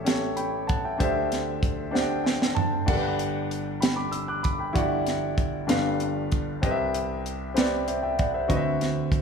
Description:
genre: slow gospel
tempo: 64 BPM (dotted quarters)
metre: 6/8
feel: straight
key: G major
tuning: A4 = 440 Hz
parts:
  - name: warm concert grand piano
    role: accompaniment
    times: 0.0-9.2 s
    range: G1 to F#6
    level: -26 LUFS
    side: equal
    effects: none
  - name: tight funk drum kit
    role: drums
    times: 0.1-9.2 s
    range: crash cymbal, hi-hat, kick drum, snare drum, toms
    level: -26 LUFS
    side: right 1 dB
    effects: none
room: moderate scoring stage reverb, RT60 1.6 s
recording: studio ambience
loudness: -24 LUFS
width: side -6 dB against mid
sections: 0.0-9.2 A section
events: drum fill 1.9-2.9; grand piano fill 1.9-2.9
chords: 0.0 A7; 1.0 D9sus4; 2.9 Gmaj7; 5.7 G7; 6.6 Cmaj7; 8.5 D13

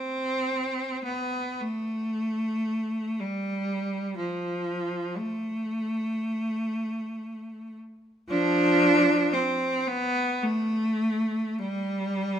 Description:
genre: classical, free, expressive piece for unaccompanied cello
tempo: free time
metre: none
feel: none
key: unclear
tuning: A4 = 441 Hz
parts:
  - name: clear cello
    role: solo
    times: 0.0-12.4 s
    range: F3 to D4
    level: -25 LUFS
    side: equal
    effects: none
room: light reverb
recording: close, detailed microphones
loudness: -25 LUFS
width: side -9 dB against mid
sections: 0.0-12.4 A section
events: none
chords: none

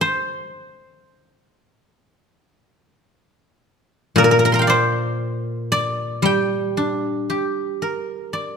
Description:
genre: chinese traditional, Chinese solo plucked strings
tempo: 58 BPM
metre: 4/4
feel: rubato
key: G yu mode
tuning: A4 = 440 Hz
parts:
  - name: guzheng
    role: solo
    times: 0.0-8.6 s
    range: Bb2 to C6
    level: -18 LUFS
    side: equal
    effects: none
room: moderate recital hall reverb, RT60 1.6 s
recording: minimal, uncompressed stereo recording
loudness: -18 LUFS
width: side -6 dB against mid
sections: 0.0-8.6 A section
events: none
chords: none

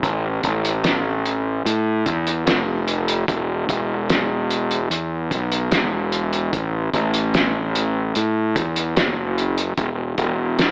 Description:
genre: psychedelic rock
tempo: 74 BPM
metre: 4/4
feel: straight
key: unclear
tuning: A4 = 438 Hz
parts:
  - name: fuzz fingered electric bass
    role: bass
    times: 0.0-10.7 s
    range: E1 to A2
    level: -20 LUFS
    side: equal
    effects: overdrive
  - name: cloth-damped thuddy drum kit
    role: drums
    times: 0.0-10.7 s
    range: hi-hat, kick drum, snare drum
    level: -21 LUFS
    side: equal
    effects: none
room: light reverb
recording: AM radio sound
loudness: -18 LUFS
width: side -31 dB against mid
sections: 0.0-10.7 A section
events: none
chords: none

